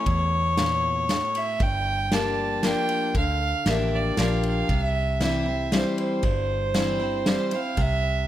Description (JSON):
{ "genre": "honky-tonk and classic country", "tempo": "117 BPM", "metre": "3/4", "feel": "straight", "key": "unclear", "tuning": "A4 = 439 Hz", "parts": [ { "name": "rich fiddle", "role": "second line", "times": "0.0-8.3 s", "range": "C5 to A5", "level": "-26 LUFS", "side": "right 2 dB", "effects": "none" }, { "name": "picked steel-string acoustic guitar", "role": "accompaniment", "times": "0.0-8.3 s", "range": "E2 to G4", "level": "-28 LUFS", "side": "left 3 dB", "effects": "none" }, { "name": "vintage muted fingered electric bass", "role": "bass", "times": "0.1-8.3 s", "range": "G1 to E2", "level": "-27 LUFS", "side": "equal", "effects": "none" }, { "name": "unplugged drum kit", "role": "drums", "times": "0.1-7.9 s", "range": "kick drum, ride cymbal, snare drum", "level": "-28 LUFS", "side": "equal", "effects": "none" } ], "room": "light reverb", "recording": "none", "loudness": "-22 LUFS", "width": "side -12 dB against mid", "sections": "0.0-8.3 A section", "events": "fiddle solo 0.0-8.3", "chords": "0.0 A; 1.6 Gm7; 4.7 C" }